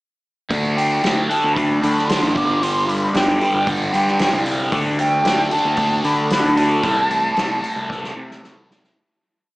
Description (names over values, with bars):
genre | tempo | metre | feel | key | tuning
psychedelic rock | 114 BPM | 4/4 | straight | unclear | A4 = 442 Hz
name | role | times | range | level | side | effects
thick fuzz guitar | riff | 0.5-9.0 s | G2 to D4 | -21 LUFS | equal | distortion, phaser
fuzz picked electric bass | bass | 0.5-8.9 s | G1 to D3 | -23 LUFS | equal | overdrive
soft-mallet drum kit | drums | 0.5-9.0 s | hi-hat, kick drum, snare drum | -25 LUFS | equal | none
mellow concert flute | melody | 0.8-8.4 s | F#5 to D6 | -20 LUFS | equal | analog delay
room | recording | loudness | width
wet cathedral reverb, RT60 5.3 s | dreamy mix soaked in reverb, small speaker sound | -16 LUFS | side -20 dB against mid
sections
0.5-9.0 verse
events
fade-out 6.8-9.0; drum fill 7.9-9.0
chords
0.5 D5; 2.4 G5; 4.7 D5; 6.8 Am/C